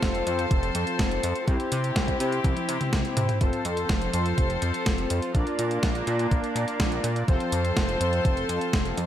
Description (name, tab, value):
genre	italo disco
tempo	124 BPM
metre	4/4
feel	straight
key	F major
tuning	A4 = 441 Hz
part	rich chamber string section	sustained chords	0.0-9.1 s	F3 to C5	-30 LUFS	equal	none
part	analog synth brass	stabs	0.0-9.1 s	C4 to D5	-30 LUFS	left 2 dB	chorus, cassette tape, tape echo
part	chorused synth bass	bass	0.0-9.1 s	F1 to C3	-29 LUFS	equal	none
part	clean 12-bit digital drum machine	drums	0.0-9.1 s	hi-hat, snare drum, toms	-30 LUFS	equal	overdrive, gated reverb
part	electronic kick drum	drums	0.0-8.8 s	none	-25 LUFS	equal	overdrive
room	light reverb, digital ambience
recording	none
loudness	-23 LUFS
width	side -11 dB against mid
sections	0.0-9.1 A section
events	drum fill 2.4-3.4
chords	0.0 F; 1.5 C; 3.4 F; 5.3 Bb; 7.3 F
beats	0.03 0.51 0.99 | 1.48 1.96 2.44 2.93 | 3.41 3.90 4.38 4.86 | 5.35 5.83 6.32 6.80 | 7.28 7.77 8.25 8.73